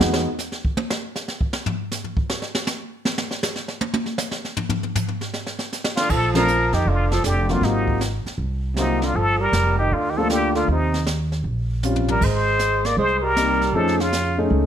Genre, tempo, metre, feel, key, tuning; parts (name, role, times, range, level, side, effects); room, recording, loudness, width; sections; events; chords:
jazz, small-group swing and bop; 157 BPM; 4/4; swing 66% on 8ths; Bb major from 6.1 s; A4 = 439 Hz
warm grand piano; accompaniment; 0.0-0.3, 6.3-14.7 s; F3 to G#4; -23 LUFS; left 2 dB
upright bass; bass; 0.0-0.2, 6.1-14.7 s; F1 to F2; -23 LUFS; right 1 dB
jazz brush drum kit; drums; 0.0-14.7 s; brushed snare drum, crash cymbal, hi-hat, kick drum, ride cymbal, snare drum, toms; -25 LUFS; equal
trumpet with plunger mute; melody; 6.0-14.4 s; Eb4 to D5; -22 LUFS; left 1 dB
breathy tenor saxophone; second line; 6.0-14.4 s; C3 to Bb3; -25 LUFS; right 4 dB
light reverb; -19 LUFS; side -10 dB against mid
0.0-6.1 A section; 6.1-14.7 B section
drum solo 0.0-6.1; band accent 6.3; drum fill 11.8-12.2
0.0 Emaj9; 1.5 N.C.; 6.1 Bbmaj9; 7.6 Ab13; 9.2 Gm7; 10.7 Eb13; 12.2 Abmaj7; 13.7 F7alt